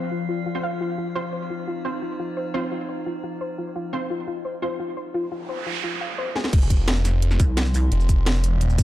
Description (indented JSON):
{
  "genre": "dark technical drum and bass",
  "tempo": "173 BPM",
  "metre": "4/4",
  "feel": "straight",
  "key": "unclear",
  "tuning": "A4 = 436 Hz",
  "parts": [
    { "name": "metallic inharmonic drone", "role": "sustained chords", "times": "0.0-8.8 s", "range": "F3 to F5", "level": "-32 LUFS", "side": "left 2 dB", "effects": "chorus, built-in reverb, phaser, sidechain pumping" },
    { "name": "soft round pluck", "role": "arpeggios", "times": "0.0-6.4 s", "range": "F4 to F5", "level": "-30 LUFS", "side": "left 2 dB", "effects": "wide subtle chorus, sidechain pumping, dub echo" },
    { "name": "orchestra-hit-like synth stab", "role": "stabs", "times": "0.5-4.7 s", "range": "C4 to C5", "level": "-32 LUFS", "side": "right 3 dB", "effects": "built-in reverb, dub echo" },
    { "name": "noise sweep", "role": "sound effects", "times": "5.3-6.5 s", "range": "none", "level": "-32 LUFS", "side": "right 5 dB", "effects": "none" },
    { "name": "drum and bass drum kit", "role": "drums", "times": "6.4-8.8 s", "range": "cabasa, crash cymbal, hi-hat, snare drum", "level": "-27 LUFS", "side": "equal", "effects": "overdrive" },
    { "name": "phased detuned saw bass", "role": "bass", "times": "6.5-8.8 s", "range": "F1", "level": "-20 LUFS", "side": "equal", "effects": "phaser, tube saturation" },
    { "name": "electronic kick drum", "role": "drums", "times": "6.5-8.8 s", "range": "none", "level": "-18 LUFS", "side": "equal", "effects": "none" },
    { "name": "pulsing pluck wobble bass", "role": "bass", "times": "7.4-7.9 s", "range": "C2", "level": "-20 LUFS", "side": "equal", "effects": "chorus" }
  ],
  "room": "light reverb",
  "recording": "dark, warm production",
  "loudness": "-22 LUFS",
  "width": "side -14 dB against mid",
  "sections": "0.0-6.5 A section; 6.5-8.8 B section",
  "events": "filter sweep on synth pluck 0.0-6.5; noise sweep 5.3-6.5; drum fill 6.4; drop 6.5-8.8",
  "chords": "0.0 F5"
}